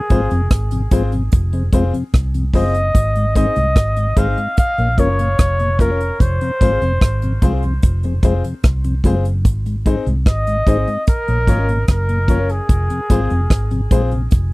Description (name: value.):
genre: roots reggae.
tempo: 74 BPM.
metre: 4/4.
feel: straight.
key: unclear.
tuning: A4 = 440 Hz.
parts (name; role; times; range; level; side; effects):
warm flugelhorn; melody; 0.0-14.1 s; Ab4 to F5; -22 LUFS; equal; tape echo.
mellow tonewheel organ; accompaniment; 0.1-14.2 s; F2 to Db4; -21 LUFS; left 2 dB; slow rotary speaker.
clear baby grand piano; stabs; 0.1-14.1 s; C4 to Db5; -24 LUFS; left 4 dB; none.
vintage muted fingered electric bass; bass; 0.1-14.5 s; F1 to C2; -18 LUFS; equal; none.
soft brush drum kit; drums; 0.1-14.5 s; hi-hat, kick drum, rim click; -15 LUFS; equal; none.
room: little or no reverb.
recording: dry, close 1970s-style studio recording.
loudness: -14 LUFS.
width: side -22 dB against mid.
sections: 0.0-14.5 A section.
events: none.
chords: 0.0 Fm; 2.9 Ab; 4.6 Bbm; 6.2 Fm; 9.4 Ab; 11.1 Bbm; 12.7 Fm.